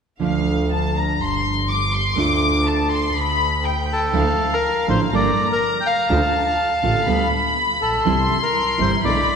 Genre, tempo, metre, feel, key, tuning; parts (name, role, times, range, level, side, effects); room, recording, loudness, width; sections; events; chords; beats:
tango; 122 BPM; 4/4; rubato; D minor; A4 = 440 Hz
warm studio violin section; second line; 0.2-9.4 s; F5 to D6; -22 LUFS; left 3 dB
nylon-string guitar; accompaniment; 0.2-9.2 s; B2 to A4; -23 LUFS; right 3 dB
clear double bass; bass; 0.2-9.2 s; G1 to D2; -24 LUFS; right 1 dB
bandoneon; melody; 3.9-9.4 s; A4 to G5; -20 LUFS; equal
wet concert hall reverb, RT60 2.4 s; recorded in a church or concert hall; -17 LUFS; side -6 dB against mid
0.2-4.1 A section; 4.1-9.4 B section
0.2 Dm; 1.2 Gsus4; 2.2 Dm; 3.1 G/D; 4.1 Dmadd9; 5.1 Gmadd9; 6.1 Dm; 7.1 G/D; 8.1 C
| 0.21 0.71 1.20 1.69 | 2.17 2.66 3.14 3.63 | 4.13 4.62 5.12 5.61 | 6.10 6.59 7.07 7.56 | 8.05 8.54 9.03